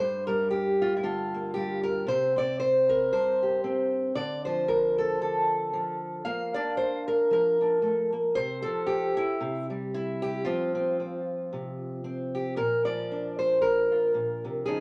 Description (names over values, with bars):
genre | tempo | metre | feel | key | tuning
folk, solo fingerstyle acoustic guitar | 114 BPM | 4/4 | swing 56% on 8ths | unclear | A4 = 440 Hz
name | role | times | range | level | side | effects
fingerpicked steel-string acoustic guitar | solo | 0.0-14.8 s | G2 to F5 | -28 LUFS | equal | none
room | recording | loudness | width
moderate studio reverb, RT60 0.8 s | none | -28 LUFS | mono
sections
0.0-12.6 A section; 12.6-14.8 B section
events
none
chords
0.0 Gm; 2.1 C5; 4.2 Dm; 6.3 Bb; 8.4 Csus4; 9.4 C; 10.5 F5; 12.6 Bb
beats
0.51 1.03 1.55 | 2.07 2.60 3.12 3.64 | 4.17 4.69 5.21 5.74 | 6.26 6.79 7.31 7.83 | 8.36 8.88 9.41 9.93 | 10.46 10.98 11.51 12.03 | 12.56 13.09 13.61 14.13 | 14.66